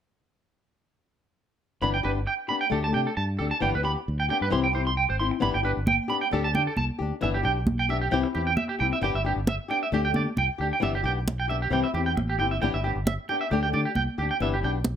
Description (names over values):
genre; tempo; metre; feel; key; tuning
highlife guitar band; 134 BPM; 4/4; straight; G major; A4 = 439 Hz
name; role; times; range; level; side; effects
flamenco guitar; accompaniment; 1.8-14.8 s; E3 to G4; -28 LUFS; left 7 dB; none
electric guitar at the edge of break-up; arpeggios; 1.8-14.7 s; G4 to C6; -27 LUFS; right 4 dB; lush chorus, slapback echo
fingered electric bass; bass; 1.8-15.0 s; G1 to D3; -29 LUFS; equal; none
congas; percussion; 5.4-15.0 s; none; -29 LUFS; right 1 dB; none
room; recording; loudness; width
moderate small room reverb, RT60 0.5 s; none; -23 LUFS; side -9 dB against mid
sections
1.8-5.4 A section; 5.4-15.0 B section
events
none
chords
1.8 G6; 2.7 Dsus4; 3.6 G6; 4.5 C; 5.4 G6; 6.3 Dsus4; 7.2 G6; 8.1 C; 9.0 G6; 9.9 Dsus4; 10.8 G6; 11.7 C; 12.6 G6; 13.5 Dsus4; 14.4 G6